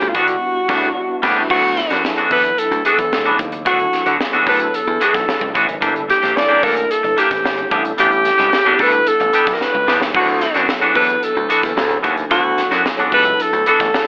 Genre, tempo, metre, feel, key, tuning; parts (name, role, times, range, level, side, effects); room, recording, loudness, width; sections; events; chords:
polished 1980s jazz-funk pop; 111 BPM; 4/4; straight; D major; A4 = 440 Hz
warm alto saxophone; melody; 0.0-14.1 s; F4 to D5; -19 LUFS; equal
mellow tine electric piano; accompaniment; 0.0-14.1 s; F#3 to A4; -28 LUFS; equal; ensemble chorus
twangy electric guitar; riff; 0.0-14.0 s; E3 to A4; -21 LUFS; equal; subtle chorus
slap bass; bass; 0.0-13.9 s; G1 to D3; -26 LUFS; equal
crisp fusion drum kit; drums; 0.0-14.1 s; crash cymbal, hi-hat, kick drum, snare drum; -25 LUFS; equal; gated reverb
light reverb, studio reverb; telephone sound; -16 LUFS; mono
0.0-1.5 A section; 1.5-14.1 B section
band accent 0.4-1.5; drum fill 9.6-10.1
0.0 Em9/D; 1.5 D69; 5.8 Gm6; 7.7 A9sus4; 10.1 D69